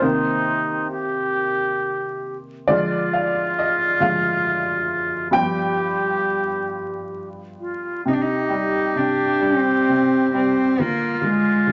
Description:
celtic folk, Celtic slow air; 45 BPM (dotted quarters); 6/8; rubato; C minor; A4 = 440 Hz
bright baroque flute; second line; 0.0-11.7 s; Eb4 to G4; -24 LUFS; equal
clear upright piano; accompaniment; 0.0-11.7 s; G2 to G5; -26 LUFS; equal
dark cello; melody; 8.1-11.7 s; Ab3 to Eb4; -22 LUFS; equal
wet studio reverb, RT60 0.5 s; vinyl crackle, nothing above 7.7 kHz; -21 LUFS; mono
0.0-8.0 A section; 8.0-11.7 B section
upright piano solo 0.0-8.0
0.0 Cm7; 2.7 Ddim; 5.3 G7; 8.0 C5; 10.8 N.C.

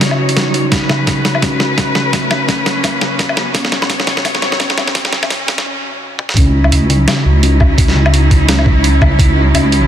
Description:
half-time drum and bass; 170 BPM; 4/4; swing 57% on 16ths, half-time; C# minor; A4 = 440 Hz
rich studio cello section; sustained chords; 0.0-9.9 s; E3 to C#5; -19 LUFS; equal; sidechain pumping, low-pass filter
boom bap sampler-style drum kit; drums; 0.0-9.8 s; hi-hat, snare drum, toms, woodblock; -16 LUFS; equal; studio reverb
riser; sound effects; 0.2-5.7 s; -25 LUFS; right 1 dB
pulsing gated texture; texture; 0.0-9.9 s; F#3 to F#4; -26 LUFS; right 3 dB; chorus, built-in reverb
kalimba; arpeggios; 0.4-9.7 s; C#3 to D#4; -18 LUFS; left 1 dB; vintage 12-bit sampler grit, tape echo
electronic kick drum; drums; 0.7-9.3 s; -13 LUFS; equal; studio reverb
deep soft wobble bass; bass; 6.4-9.9 s; C#2; -12 LUFS; equal; chorus
light reverb, digital ambience; dense, heavily limited modern master, high-pass filter; -11 LUFS; side -10 dB against mid
0.0-6.4 A section; 6.4-9.9 B section
build-up 0.0-6.4; drum fill 0.0-5.7, 6.2; filter sweep 0.0-6.4; riser 0.2-5.7; break 5.7-6.4; drop 6.4-9.9
0.0 C#madd9; 0.7 Bsus2; 6.4 C#madd9

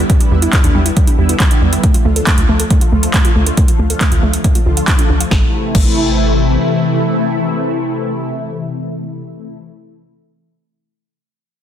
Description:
uplifting trance; 138 BPM; 4/4; straight; A minor; A4 = 439 Hz
analog string pad; sustained chords; 0.0-9.6 s; C3 to E4; -18 LUFS; left 1 dB; ensemble chorus, phaser, sidechain pumping
tight sequencer bass; bass; 0.0-6.6 s; A1 to E2; -15 LUFS; equal; sidechain pumping
wide unison pluck; arpeggios; 0.1-5.9 s; G3 to F5; -20 LUFS; right 3 dB; sidechain pumping, tape echo
big-room dance drum kit; drums; 0.1-5.9 s; crash cymbal, handclaps, hi-hat, snare drum; -20 LUFS; right 1 dB; sidechain pumping on hats, sidechain pumping on cymbals
electronic kick drum; drums; 0.1-5.9 s; -13 LUFS; equal
light reverb; dense, heavily limited modern master; -11 LUFS; side -10 dB against mid
0.0-5.3 A section; 5.3-8.8 B section
filter sweep on analog synth bass 0.0-5.3; filter sweep on synth pluck 0.0-5.3
0.0 Em7; 1.8 Dm; 5.3 Am

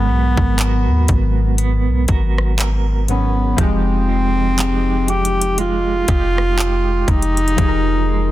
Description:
contemporary R&B; 60 BPM; 4/4; swing 58% on 16ths; A4 = 440 Hz
mellow bass clarinet; melody; 0.0-8.3 s; Cb4 to G4; -20 LUFS; equal; tape echo
warm analog keys; accompaniment; 0.0-8.3 s; Ab2 to Bb4; -24 LUFS; left 2 dB; chorus
clean electric guitar; arpeggios; 0.0-8.3 s; F3 to Bb4; -26 LUFS; right 9 dB; tremolo, tape echo
warm 808-style bass; bass; 0.0-8.3 s; F1 to Eb2; -18 LUFS; equal
trap drum kit; drums; 0.4-7.9 s; handclaps, hi-hat, kick drum, rim click; -20 LUFS; equal
digital ambience; dense, heavily limited modern master; -14 LUFS; side -14 dB against mid
0.0-8.3 A section
0.0 Abm9; 3.6 Fm9

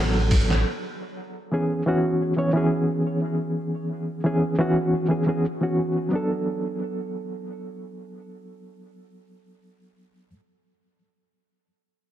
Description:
trip hop; 88 BPM; 4/4; straight; B dorian; A4 = 439 Hz
reed electric piano; accompaniment; 0.0-10.3 s; E3 to C#5; -23 LUFS; equal; fast tremolo, tape echo
deep dub fingered electric bass; bass; 0.0-0.6 s; A1; -23 LUFS; equal
trip hop sampler-style drum kit; drums; 0.3-0.7 s; hi-hat, kick drum, snare drum; -24 LUFS; equal
light reverb, digital ambience; -22 LUFS; side -11 dB against mid
0.0-6.1 A section; 6.1-8.8 B section
0.0 Bm7; 0.7 C#m7; 6.1 Bm7

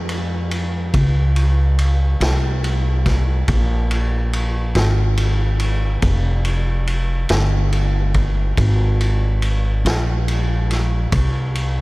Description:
slow blues; 47 BPM (dotted quarters); 12/8; straight; F minor; A4 = 436 Hz
upright bass; bass; 0.0-11.8 s; F1 to F2; -17 LUFS; equal
vintage drum kit; drums; 0.1-11.8 s; kick drum, ride cymbal, snare drum; -23 LUFS; equal
light reverb; -16 LUFS; side -21 dB against mid
0.0-11.8 A section

